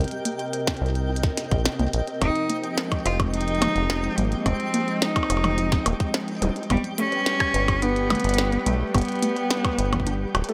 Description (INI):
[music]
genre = IDM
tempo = 107 BPM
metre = 4/4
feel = straight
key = unclear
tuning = A4 = 440 Hz
[part]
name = hollow soft pad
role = sustained chords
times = 0.0-10.5 s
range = C3 to G5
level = -32 LUFS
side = equal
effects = chorus
[part]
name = warbly dusty pluck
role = arpeggios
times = 0.0-10.5 s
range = G3 to C5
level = -33 LUFS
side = equal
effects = chorus, delay
[part]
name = deep acid bass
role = bass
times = 0.0-10.4 s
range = D1 to C2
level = -28 LUFS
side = equal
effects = none
[part]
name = glitchy drum kit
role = drums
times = 0.0-10.5 s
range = hi-hat, percussion blips, rim click, snare drum, toms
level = -30 LUFS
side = equal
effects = none
[part]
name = twinkling granular texture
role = texture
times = 0.0-10.5 s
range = G4 to G5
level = -41 LUFS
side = equal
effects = built-in reverb
[part]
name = electronic kick drum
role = drums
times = 0.7-10.1 s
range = none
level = -28 LUFS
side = equal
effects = none
[part]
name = clear cello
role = melody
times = 2.2-10.5 s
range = G3 to F4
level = -28 LUFS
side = equal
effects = delay
[sound]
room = light reverb, digital ambience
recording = none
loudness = -24 LUFS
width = mono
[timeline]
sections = 0.0-10.5 A section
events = filter sweep on synth arpeggio sound 0.0-10.5; kick drops out 10.1-10.5; drum fill 10.3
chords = 0.0 Cm7; 2.2 Fm7; 6.7 G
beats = 0.53 1.09 1.66 | 2.22 2.78 3.34 3.90 | 4.46 5.02 5.58 6.14 | 6.70 7.26 7.82 8.38 | 8.95 9.51 10.07